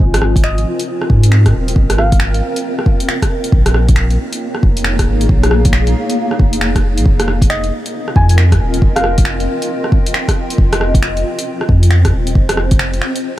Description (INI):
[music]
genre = future garage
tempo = 136 BPM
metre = 4/4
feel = swing 64% on 16ths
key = F minor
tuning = A4 = 441 Hz
[part]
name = granular cloud pad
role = sustained chords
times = 0.0-13.4 s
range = Bb3 to G5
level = -20 LUFS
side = equal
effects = built-in reverb, sidechain pumping
[part]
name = warm sub bass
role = bass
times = 0.0-13.0 s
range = Eb1 to Ab2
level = -14 LUFS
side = equal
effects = sidechain pumping
[part]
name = electronic kick drum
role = drums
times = 0.0-12.8 s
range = none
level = -13 LUFS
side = equal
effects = none
[part]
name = deep house drum kit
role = drums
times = 0.1-13.2 s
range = finger snaps, hi-hat, rim click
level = -20 LUFS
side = equal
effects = none
[part]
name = soft struck synth lead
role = melody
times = 0.4-2.4, 7.5-9.3 s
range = Eb5 to Ab5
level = -24 LUFS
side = left 1 dB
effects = chorus, digital delay
[sound]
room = digital ambience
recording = vinyl crackle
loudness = -11 LUFS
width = side -15 dB against mid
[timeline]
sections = 0.0-13.4 A section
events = none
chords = 0.0 Abmaj7; 3.5 Bbm7; 7.1 Fm7